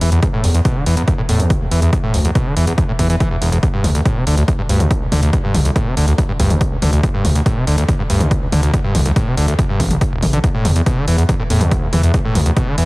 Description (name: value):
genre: driving peak-time techno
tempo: 141 BPM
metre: 4/4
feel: straight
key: E minor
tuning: A4 = 443 Hz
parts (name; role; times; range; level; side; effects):
- screaming distorted acid line; riff; 0.0-12.9 s; D1 to E3; -18 LUFS; equal; distortion, chorus, vintage 12-bit sampler grit, sidechain pumping, digital delay
- gritty driven synth bass; bass; 0.0-12.9 s; E1 to E2; -16 LUFS; equal; sidechain pumping
- punchy analog drum machine; drums; 0.0-12.9 s; hi-hat, toms; -22 LUFS; equal; overdrive
- electronic kick drum; drums; 0.2-12.7 s; none; -18 LUFS; equal; overdrive
room: light reverb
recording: heavily compressed radio sound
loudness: -13 LUFS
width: side -23 dB against mid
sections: 0.0-12.9 A section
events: none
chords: 0.0 E5; 3.6 D5; 10.4 E5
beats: | 0.23 0.65 1.08 1.50 | 1.93 2.35 2.78 3.20 | 3.63 4.05 4.48 4.91 | 5.33 5.76 6.18 6.61 | 7.03 7.46 7.88 8.31 | 8.74 9.16 9.59 10.01 | 10.44 10.86 11.29 11.71 | 12.14 12.57